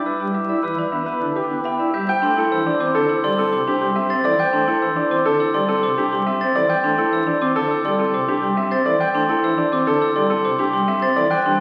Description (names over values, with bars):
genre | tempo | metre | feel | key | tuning
classical, minimalist pattern music | 104 BPM | 4/4 | straight | A minor | A4 = 441 Hz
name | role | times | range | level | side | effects
pipe organ, sparkling flutes | accompaniment | 0.0-11.6 s | C3 to E4 | -27 LUFS | equal | none
buzzing marimba with medium hard mallets | arpeggios | 0.0-11.6 s | C4 to E5 | -28 LUFS | equal | none
clear baby grand piano | melody | 0.1-11.5 s | G4 to G5 | -24 LUFS | equal | none
glockenspiel with soft plastic mallets | arpeggios | 0.1-11.6 s | B5 to A6 | -24 LUFS | equal | none
mellow French horn | second line | 2.1-6.5, 11.3-11.6 s | C5 | -32 LUFS | equal | none
room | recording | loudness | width
wet scoring stage reverb, RT60 1.6 s | very old 78 rpm record, vinyl crackle | -19 LUFS | mono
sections
0.0-2.1 A section; 2.1-11.6 B section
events
none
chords
0.0 G; 2.1 Am7